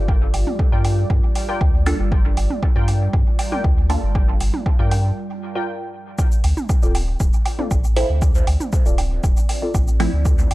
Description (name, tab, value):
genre	dub techno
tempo	118 BPM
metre	4/4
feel	straight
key	D minor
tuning	A4 = 438 Hz
part	deep dark ambient pad	sustained chords	0.0-10.5 s	G3 to D5	-31 LUFS	right 2 dB	chorus, built-in reverb, sidechain pumping
part	warm sub bass	bass	0.0-10.5 s	D1 to G2	-20 LUFS	equal	transformer saturation, sidechain pumping
part	electronic kick drum	drums	0.1-10.4 s	none	-18 LUFS	equal	none
part	electronic woodblock and toms	percussion	0.1-10.5 s	none	-30 LUFS	right 3 dB	overdrive, sidechain pumping on perc, sidechain pumping on toms, dub echo
part	electronic hi-hat and shaker	drums	0.3-10.5 s	none	-34 LUFS	left 1 dB	overdrive
part	warbly dusty pluck	riff	0.7-9.7 s	C4 to G5	-29 LUFS	left 2 dB	wide subtle chorus, sidechain pumping, dub echo
part	filtered dub chord stab	stabs	1.9-4.0, 8.0-10.1 s	F3 to A4	-27 LUFS	right 2 dB	phaser, sidechain pumping, dub echo
room	little or no reverb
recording	dry, gritty hardware recording, cassette tape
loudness	-16 LUFS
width	side -18 dB against mid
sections	0.0-6.2 A section; 6.2-10.5 A section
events	break 5.2-6.2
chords	0.0 G7(no3); 6.2 Dm7